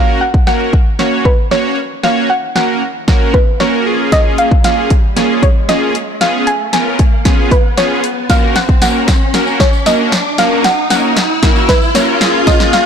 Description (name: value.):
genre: dance-pop.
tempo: 115 BPM.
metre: 4/4.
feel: straight.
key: F# major.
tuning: A4 = 441 Hz.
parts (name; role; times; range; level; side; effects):
soft round pluck; melody; 0.0-12.8 s; B4 to G#5; -17 LUFS; equal; chorus, digital delay.
big bright polysynth; accompaniment; 0.0-12.8 s; A#3 to C#5; -15 LUFS; right 1 dB; chorus, sidechain pumping.
riser; sound effects; 1.8-12.9 s; none; -20 LUFS; equal; none.
house drum kit; drums; 0.3-12.9 s; hi-hat, kick drum, snare drum; -13 LUFS; equal; soft clipping on snare.
tambourine; percussion; 8.3-12.9 s; none; -28 LUFS; left 12 dB; none.
room: light reverb, digital ambience.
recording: blown-out, overdriven recording, overdrive.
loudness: -10 LUFS.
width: side -7 dB against mid.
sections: 0.0-12.9 A section.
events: build-up 0.0-12.9; drum fill 0.0-12.9; riser 1.8-12.9.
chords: 0.0 F#; 3.9 A#m7; 6.2 C#7; 8.3 F#; 12.2 A#m7.